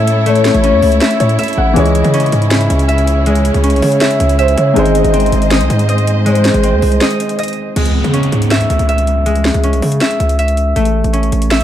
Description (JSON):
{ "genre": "hip hop, trap", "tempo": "160 BPM", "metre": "4/4", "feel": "half-time", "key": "C# harmonic minor", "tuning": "A4 = 440 Hz", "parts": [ { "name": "dark grand piano", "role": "accompaniment", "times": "0.0-7.8 s", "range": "D#3 to F#5", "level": "-19 LUFS", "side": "left 2 dB", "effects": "none" }, { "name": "warm symphonic string section", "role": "sustained chords", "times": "0.0-7.7 s", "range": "C#3 to D#5", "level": "-20 LUFS", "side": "right 2 dB", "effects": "none" }, { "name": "concert harp", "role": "arpeggios", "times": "0.0-11.6 s", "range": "G#3 to E5", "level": "-16 LUFS", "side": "left 1 dB", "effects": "digital delay" }, { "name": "distorted 808-style bass", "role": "bass", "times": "0.0-11.6 s", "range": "G#1 to C#3", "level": "-14 LUFS", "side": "equal", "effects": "distortion" }, { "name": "trap drum kit", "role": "drums", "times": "0.1-11.6 s", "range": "crash cymbal, hi-hat, snare drum", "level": "-19 LUFS", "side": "equal", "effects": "none" }, { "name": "gliding portamento lead", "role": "second line", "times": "0.3-7.3 s", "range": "B#4 to D#5", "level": "-18 LUFS", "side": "equal", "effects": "chorus, phaser, digital delay" }, { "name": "downlifter", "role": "sound effects", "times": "7.8-10.8 s", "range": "none", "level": "-24 LUFS", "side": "right 3 dB", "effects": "none" } ], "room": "light reverb, studio ambience", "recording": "dark, warm production", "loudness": "-10 LUFS", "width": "side -11 dB against mid", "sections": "0.0-7.8 A section; 7.8-11.6 B section", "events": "grand piano fill 1.0-1.8; break 7.0-7.8", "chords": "0.0 A; 1.8 C#m; 4.8 G#; 7.8 C#m; 10.8 A", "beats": "| 0.26 0.64 1.01 1.39 | 1.76 2.14 2.51 2.89 | 3.26 3.64 4.01 4.39 | 4.76 5.14 5.51 5.89 | 6.26 6.64 7.01 7.39 | 7.76 8.14 8.51 8.89 | 9.26 9.64 10.01 10.39 | 10.76 11.14 11.51" }